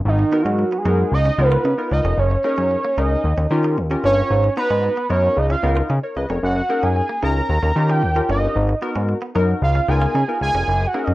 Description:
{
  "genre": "funk",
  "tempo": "113 BPM",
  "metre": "4/4",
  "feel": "straight",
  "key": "G# dorian",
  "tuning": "A4 = 436 Hz",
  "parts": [
    { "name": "fat analog lead", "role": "melody", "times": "0.1-11.1 s", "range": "D#4 to A#5", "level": "-20 LUFS", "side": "right 2 dB", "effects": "chorus, slapback echo" },
    { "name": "fat analog bass", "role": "bass", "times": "0.1-11.1 s", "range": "E#1 to D#3", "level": "-19 LUFS", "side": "equal", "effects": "none" },
    { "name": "direct-recorded clean electric guitar", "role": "riff", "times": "0.2-11.1 s", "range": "A#3 to E#4", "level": "-33 LUFS", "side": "right 3 dB", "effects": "wide subtle chorus" },
    { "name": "funky polysynth comp", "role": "accompaniment", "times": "0.3-11.1 s", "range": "B3 to A#5", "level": "-24 LUFS", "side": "left 2 dB", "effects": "chorus" }
  ],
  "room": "moderate studio ambience, RT60 0.5 s",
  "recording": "rough home demo mix",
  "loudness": "-16 LUFS",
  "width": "side -17 dB against mid",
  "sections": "0.1-11.1 A section",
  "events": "analog synth lead solo 0.1-11.1",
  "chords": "0.1 G#m7; 1.1 C#13; 2.2 F#6; 3.2 D#7; 4.3 G#m7; 5.4 C#13; 6.4 F#6; 7.5 D#7; 8.6 G#m7; 9.6 C#13"
}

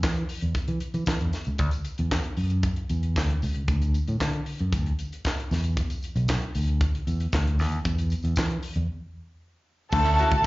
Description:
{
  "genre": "disco",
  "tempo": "115 BPM",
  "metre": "4/4",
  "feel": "straight",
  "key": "unclear",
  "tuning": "A4 = 442 Hz",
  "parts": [
    { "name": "fingered electric bass", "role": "bass", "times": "0.0-10.5 s", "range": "B1 to E3", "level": "-25 LUFS", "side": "equal", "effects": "tube saturation" },
    { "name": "tight funk drum kit", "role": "drums", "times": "0.0-10.5 s", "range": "crash cymbal, handclaps, hi-hat, kick drum, snare drum", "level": "-28 LUFS", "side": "equal", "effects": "none" },
    { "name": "tambourine", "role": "percussion", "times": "0.0-10.5 s", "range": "none", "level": "-46 LUFS", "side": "left 1 dB", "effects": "none" },
    { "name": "clear studio string section", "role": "second line", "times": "9.9-10.5 s", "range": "A4 to A5", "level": "-22 LUFS", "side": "right 1 dB", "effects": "none" },
    { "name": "bright grand piano", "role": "accompaniment", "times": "9.9-10.3 s", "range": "D3 to F#4", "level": "-28 LUFS", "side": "left 4 dB", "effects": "none" },
    { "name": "electric guitar at the edge of break-up", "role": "accompaniment", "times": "9.9-10.4 s", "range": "C#4 to E5", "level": "-29 LUFS", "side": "right 4 dB", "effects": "slapback echo" }
  ],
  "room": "little or no reverb",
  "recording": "live gig heard through the venue's PA, club reverb, nothing above 7.5 kHz",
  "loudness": "-24 LUFS",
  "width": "side -19 dB against mid",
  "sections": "0.0-9.9 A section",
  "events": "break 8.9-9.9",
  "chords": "0.0 E5; 1.6 Dadd9; 5.5 E5; 9.9 Dmaj9"
}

